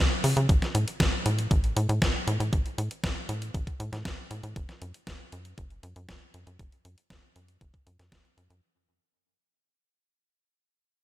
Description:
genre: italo disco.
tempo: 118 BPM.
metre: 4/4.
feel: straight.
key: unclear.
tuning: A4 = 437 Hz.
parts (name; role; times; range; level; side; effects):
tight sequencer bass; bass; 0.0-8.6 s; F#1 to C#3; -28 LUFS; equal; none.
clean 12-bit digital drum machine; drums; 0.2-8.6 s; hi-hat, snare drum; -30 LUFS; equal; studio ambience.
electronic kick drum; drums; 0.5-8.2 s; none; -27 LUFS; equal; studio ambience.
room: light reverb, digital ambience.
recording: none.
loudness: -25 LUFS.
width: side -15 dB against mid.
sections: 0.0-8.6 A section.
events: fade-out 0.0-8.6.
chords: none.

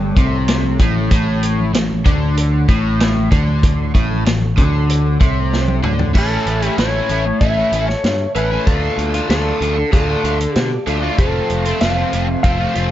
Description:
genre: psychedelic rock.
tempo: 95 BPM.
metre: 4/4.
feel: straight.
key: A major.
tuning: A4 = 440 Hz.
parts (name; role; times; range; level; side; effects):
ensemble organ-string; sustained chords; 0.0-12.9 s; E3 to D6; -30 LUFS; right 4 dB; phaser, ensemble chorus.
overdriven electric guitar; riff; 0.0-12.9 s; F2 to F4; -19 LUFS; left 1 dB; flanger.
picked electric bass; bass; 0.0-12.9 s; F1 to B2; -19 LUFS; equal; none.
vintage drum kit; drums; 0.2-12.9 s; crash cymbal, hi-hat, kick drum, snare drum, toms; -18 LUFS; equal; none.
congas; percussion; 0.6-6.1 s; none; -30 LUFS; left 1 dB; none.
clean lap steel guitar; melody; 6.2-12.9 s; A4 to F5; -21 LUFS; equal; slapback echo.
room: small room ambience.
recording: nothing above 7.6 kHz.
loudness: -14 LUFS.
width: side -12 dB against mid.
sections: 0.0-6.2 A section; 6.2-12.9 B section.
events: drum fill 5.5-6.2.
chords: 0.0 A; 8.7 Dm; 11.2 F.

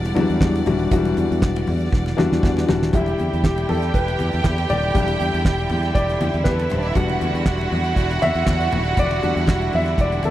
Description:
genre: disco.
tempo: 119 BPM.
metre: 4/4.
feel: straight.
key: E minor.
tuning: A4 = 441 Hz.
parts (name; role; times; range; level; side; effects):
warm grand piano; accompaniment; 0.0-10.3 s; E3 to E5; -23 LUFS; left 3 dB; none.
bright studio string section; sustained chords; 0.0-10.3 s; D3 to F#5; -29 LUFS; right 1 dB; none.
fingered electric bass; bass; 0.0-10.3 s; D#1 to E2; -23 LUFS; right 1 dB; none.
damped 70s drum kit; drums; 0.0-10.3 s; handclaps, hi-hat, kick drum, snare drum; -20 LUFS; right 1 dB; none.
congas; percussion; 0.1-10.3 s; none; -30 LUFS; left 2 dB; none.
warm studio violin section; second line; 2.9-10.3 s; G3 to G5; -25 LUFS; right 3 dB; none.
room: little or no reverb.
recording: dry, close 1970s-style studio recording.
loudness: -17 LUFS.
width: side -13 dB against mid.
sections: 0.0-2.9 A section; 2.9-10.3 B section.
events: drum fill 1.9-2.9; grand piano solo 2.9-10.3.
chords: 0.0 Em9.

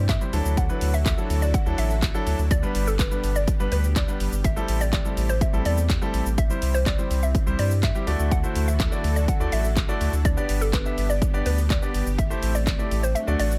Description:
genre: dance-pop.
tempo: 124 BPM.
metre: 4/4.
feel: straight.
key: G major.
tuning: A4 = 439 Hz.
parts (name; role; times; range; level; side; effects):
hollow square pluck; melody; 0.0-13.5 s; A4 to F#5; -34 LUFS; equal; chorus, sidechain pumping.
string machine, cellos; sustained chords; 0.0-13.6 s; D3 to A4; -38 LUFS; equal; ensemble chorus, sidechain pumping.
saturated sub bass; bass; 0.0-13.6 s; G1 to G2; -26 LUFS; equal; sidechain pumping.
impact; sound effects; 0.0-0.6 s; none; barely audible; none; none.
pop drum kit; drums; 0.1-13.6 s; handclaps, hi-hat, kick drum, shaker; -28 LUFS; equal; none.
clear grand piano; accompaniment; 0.2-13.5 s; F#3 to E5; -32 LUFS; equal; sidechain pumping.
room: digital ambience.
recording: none.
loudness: -23 LUFS.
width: mono.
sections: 0.0-13.6 A section.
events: impact 0.0-0.6; kick muted 13.2-13.6.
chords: 0.3 Dadd9; 2.5 G; 4.4 Am7; 6.4 C; 8.1 Dadd9; 10.3 G; 12.2 Am7.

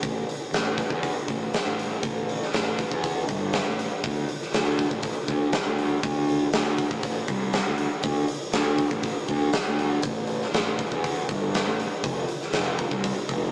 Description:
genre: blues rock power trio and southern rock.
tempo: 120 BPM.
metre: 4/4.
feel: straight.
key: A minor.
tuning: A4 = 440 Hz.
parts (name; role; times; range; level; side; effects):
fuzz fingered electric bass; bass; 0.0-13.5 s; F1 to E2; -29 LUFS; equal; overdrive.
huge arena drum kit; drums; 0.0-13.4 s; hi-hat, kick drum, snare drum; -29 LUFS; equal; none.
room: moderate studio reverb, RT60 0.5 s.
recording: band playing live in one room, small speaker sound.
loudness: -26 LUFS.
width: mono.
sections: 0.0-13.5 A section.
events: none.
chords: none.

